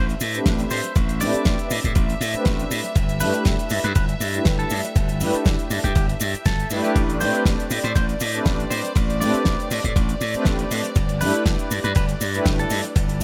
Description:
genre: nu-disco, nu disco.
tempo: 120 BPM.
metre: 4/4.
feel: swing 54% on 16ths.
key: A minor.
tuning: A4 = 440 Hz.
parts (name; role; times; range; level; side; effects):
electric guitar at the edge of break-up; melody; 0.0-12.8 s; G4 to D5; -33 LUFS; equal; dub echo.
clear studio violin section; sustained chords; 0.0-13.2 s; D5 to E5; -34 LUFS; equal; sidechain pumping.
glassy slap bass; bass; 0.0-13.2 s; G1 to A2; -27 LUFS; equal; none.
damped 70s drum kit; drums; 0.1-13.2 s; hi-hat, ride cymbal, snare drum; -31 LUFS; equal; studio ambience, dub echo.
cabasa; percussion; 0.1-13.2 s; none; -36 LUFS; equal; none.
warm analog pad; accompaniment; 0.3-13.2 s; A3 to B4; -29 LUFS; equal; chorus, dub echo.
electronic kick drum; drums; 0.5-13.1 s; none; -24 LUFS; equal; overdrive, studio ambience.
room: small room reverb.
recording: echo-heavy mix.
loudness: -21 LUFS.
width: mono.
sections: 0.0-13.2 A section.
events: none.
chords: 0.0 Asus4; 3.0 G69; 7.0 Asus4; 11.0 G5.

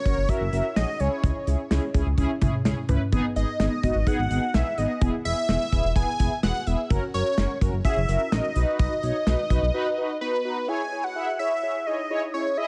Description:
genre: synth-pop.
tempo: 127 BPM.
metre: 4/4.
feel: straight.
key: unclear.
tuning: A4 = 440 Hz.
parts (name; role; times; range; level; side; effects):
unison lead; melody; 0.0-12.7 s; B4 to G#5; -30 LUFS; equal; digital delay.
mellow synth brass; accompaniment; 0.1-12.7 s; B3 to E5; -32 LUFS; equal; chorus, phaser.
smooth gliding synth bass; bass; 0.1-9.7 s; E1 to C#2; -28 LUFS; equal; none.
modern studio drum kit; drums; 0.1-9.6 s; hi-hat, kick drum, snare drum, toms; -28 LUFS; equal; none.
room: small room ambience.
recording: nothing above 10.6 kHz.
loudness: -25 LUFS.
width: mono.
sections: 0.0-10.7 A section; 10.7-12.7 B section.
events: none.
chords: 0.0 F#add9; 1.0 C#m; 3.1 G#m; 5.0 E; 6.9 F#; 8.6 B; 10.7 C#m.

